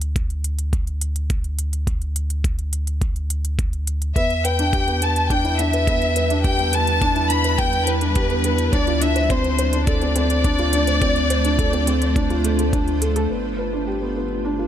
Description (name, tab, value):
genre	piano and strings electronica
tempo	105 BPM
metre	4/4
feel	straight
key	D dorian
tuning	A4 = 437 Hz
part	warm sub bass	bass	0.0-14.7 s	G1 to E2	-23 LUFS	equal	sidechain pumping
part	electronic hi-hat	drums	0.0-13.3 s	none	-28 LUFS	right 1 dB	none
part	electronic kick drum	drums	0.2-12.8 s	none	-22 LUFS	equal	none
part	rich studio violin section	melody	4.2-12.7 s	B4 to B5	-22 LUFS	left 1 dB	none
part	granular cloud pad	sustained chords	5.5-14.7 s	G3 to C5	-26 LUFS	right 1 dB	built-in reverb, sidechain pumping
part	felt-muted upright piano	riff	4.2-14.7 s	B3 to C5	-24 LUFS	equal	ping-pong delay
room	digital ambience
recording	none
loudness	-18 LUFS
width	side -10 dB against mid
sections	0.0-13.3 A section; 13.3-14.7 B section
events	none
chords	0.0 N.C.; 4.2 Em7; 8.7 Dm7; 13.3 G7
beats	0.16 0.73 1.30 | 1.88 2.45 3.02 3.59 | 4.16 4.73 5.30 5.88 | 6.45 7.02 7.59 8.16 | 8.73 9.30 9.88 10.45 | 11.02 11.59 12.16 12.73 | 13.30 13.88 14.45